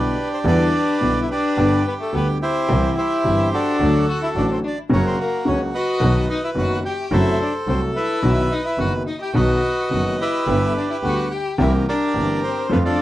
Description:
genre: tango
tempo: 108 BPM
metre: 4/4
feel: rubato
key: unclear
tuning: A4 = 442 Hz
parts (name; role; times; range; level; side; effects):
- bandoneon; melody; 0.0-13.0 s; D4 to G5; -22 LUFS; right 2 dB; none
- clear upright piano; accompaniment; 0.0-12.9 s; F#1 to A4; -22 LUFS; left 1 dB; none
- clear double bass; bass; 0.0-12.9 s; F#1 to F2; -23 LUFS; right 1 dB; none
- warm violin; second line; 0.5-13.0 s; A3 to G4; -25 LUFS; left 3 dB; tape echo
room: light reverb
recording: dry, close 1970s-style studio recording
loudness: -17 LUFS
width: side -14 dB against mid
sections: 0.0-13.0 A section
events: none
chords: 0.0 Em7; 1.6 G; 2.7 C; 3.8 D; 4.9 F#; 6.0 B; 7.1 F#dim; 8.2 B; 10.5 G; 11.6 C7

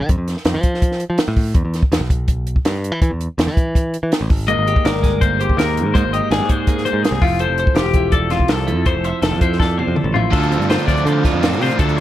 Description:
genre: math rock and midwest emo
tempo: 164 BPM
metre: 4/4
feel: straight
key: unclear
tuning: A4 = 440 Hz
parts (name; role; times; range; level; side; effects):
- modern bright picked electric bass; bass; 0.0-12.0 s; E1 to F3; -20 LUFS; equal; none
- compact cocktail drum kit; drums; 0.1-12.0 s; crash cymbal, hi-hat, kick drum, snare drum, toms; -18 LUFS; equal; none
- twelve-string electric guitar; accompaniment; 4.5-12.0 s; F2 to D5; -22 LUFS; right 6 dB; none
- twelve-string electric guitar; arpeggios; 4.5-12.0 s; F4 to E5; -20 LUFS; left 7 dB; spring reverb
- biting overdriven guitar; riff; 10.3-12.0 s; D3 to F4; -20 LUFS; right 2 dB; none
room: little or no reverb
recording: none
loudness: -15 LUFS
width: side -13 dB against mid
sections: 0.0-10.3 A section; 10.3-12.0 B section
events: drum fill 9.6-10.3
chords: 0.1 F; 1.6 Asus2 (rootless); 4.3 Abmaj9; 7.2 Fmaj7; 10.3 Dm7

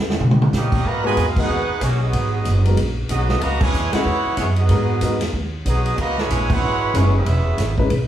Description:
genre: jazz, big band swing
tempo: 187 BPM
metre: 4/4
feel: swing 61% on 8ths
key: G# minor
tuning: A4 = 439 Hz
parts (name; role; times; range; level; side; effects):
- warm grand piano; accompaniment; 0.0-7.9 s; G3 to B4; -25 LUFS; left 3 dB; none
- upright bass; bass; 0.0-8.1 s; E1 to B2; -20 LUFS; equal; none
- swinging big-band drum kit; drums; 0.1-8.0 s; crash cymbal, hi-hat, kick drum, ride cymbal, snare drum, toms; -23 LUFS; equal; none
- muted trombone section; second line; 0.5-7.7 s; B2 to F#4; -27 LUFS; right 2 dB; none
- clear trumpet section; melody; 0.6-7.8 s; A#3 to A#5; -24 LUFS; right 2 dB; plate reverb
room: moderate large studio reverb, RT60 1.0 s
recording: heard from further back in the room, studio reverb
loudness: -16 LUFS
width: side -11 dB against mid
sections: 0.8-8.1 A section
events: drum fill 0.0-0.5; band accent 1.3, 3.6, 6.5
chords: 0.0 D#7b9; 0.8 G#m7; 3.4 C#m7; 4.7 G#m7; 6.0 C#m7

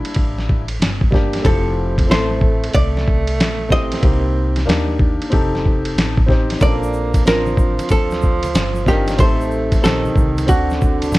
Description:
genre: hip hop, jazz-hop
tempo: 93 BPM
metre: 4/4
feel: swing 65% on 16ths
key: unclear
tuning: A4 = 441 Hz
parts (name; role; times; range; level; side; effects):
- dark baby grand piano; accompaniment; 0.0-11.2 s; G3 to C5; -22 LUFS; left 1 dB; plate reverb
- upright bass; bass; 0.0-11.2 s; F1 to Eb2; -22 LUFS; equal; none
- dusty soul sampler-style drum kit; drums; 0.0-11.2 s; hi-hat, kick drum, ride cymbal, snare drum; -16 LUFS; equal; none
- archtop guitar, miked and amplified; melody; 1.5-11.2 s; F#4 to Eb5; -22 LUFS; right 1 dB; none
- mellow tenor saxophone; second line; 1.5-11.2 s; D3 to C4; -24 LUFS; right 4 dB; plate reverb
- egg shaker and congas; percussion; 6.6-11.2 s; none; -29 LUFS; left 1 dB; none
room: light reverb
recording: none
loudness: -14 LUFS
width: side -19 dB against mid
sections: 0.0-11.2 A section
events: none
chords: 0.0 C7 (rootless); 1.4 Fmaj7; 4.0 Cm7; 5.3 F7; 6.6 Bbmaj7; 9.2 Am7b5; 10.5 D7

